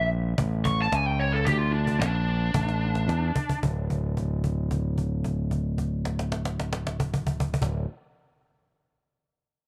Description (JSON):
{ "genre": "blues rock power trio and southern rock", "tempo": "111 BPM", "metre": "4/4", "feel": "straight", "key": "unclear", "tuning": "A4 = 439 Hz", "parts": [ { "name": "lead guitar through a small cranked amp", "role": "second line", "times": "0.0-3.6 s", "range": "D4 to C#6", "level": "-31 LUFS", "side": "equal", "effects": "overdrive" }, { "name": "growling fingered electric bass", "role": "bass", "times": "0.0-7.8 s", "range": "D1 to E2", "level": "-29 LUFS", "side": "equal", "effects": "overdrive" }, { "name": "cajon", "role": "drums", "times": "0.1-7.8 s", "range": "none", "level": "-31 LUFS", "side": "equal", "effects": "none" } ], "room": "small room ambience", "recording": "none", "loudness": "-27 LUFS", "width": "mono", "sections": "0.0-3.6 A section; 3.6-7.9 B section", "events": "lead electric guitar solo 0.0-3.6; drum fill 2.5-3.6; held note 3.6-7.6", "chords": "0.0 A; 1.5 D5; 3.6 N.C.", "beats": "0.38 0.93 | 1.47 2.00 2.54 3.08 | 3.63 4.17 4.71 5.25 | 5.79 6.33 6.87 7.41" }